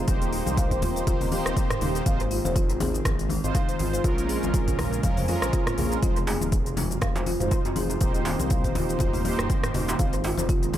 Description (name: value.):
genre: afro house.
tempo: 121 BPM.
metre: 4/4.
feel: swing 56% on 16ths.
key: unclear.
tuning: A4 = 438 Hz.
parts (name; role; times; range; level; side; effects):
ethereal airy pad; sustained chords; 0.0-10.8 s; Db3 to G4; -33 LUFS; left 1 dB; ensemble chorus, built-in reverb, sidechain pumping.
mellow synth brass; stabs; 0.0-10.2 s; Ab3 to C5; -32 LUFS; right 2 dB; chorus, phaser, sidechain pumping, dub echo.
dark detuned saw bass; bass; 0.0-10.8 s; Eb1 to F2; -30 LUFS; equal; sidechain pumping.
afro-pop drum kit; drums; 0.1-10.8 s; hi-hat, rim click, shaker, toms; -33 LUFS; equal; dub echo.
electronic kick drum; drums; 0.1-10.6 s; none; -25 LUFS; equal; none.
folk marimba with medium mallets; arpeggios; 0.3-10.8 s; C4 to F5; -32 LUFS; left 1 dB; sidechain pumping, analog delay.
congas; percussion; 0.5-10.8 s; none; -33 LUFS; left 3 dB; none.
djembe; percussion; 6.3-10.4 s; none; -34 LUFS; right 3 dB; dub echo.
room: little or no reverb.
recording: echo-heavy mix.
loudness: -22 LUFS.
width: side -12 dB against mid.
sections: 0.0-10.8 A section.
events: none.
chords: 0.1 Eb6; 2.1 Ab6; 4.0 Bbm7; 6.0 Fm7; 8.0 Eb6; 10.0 Ab6.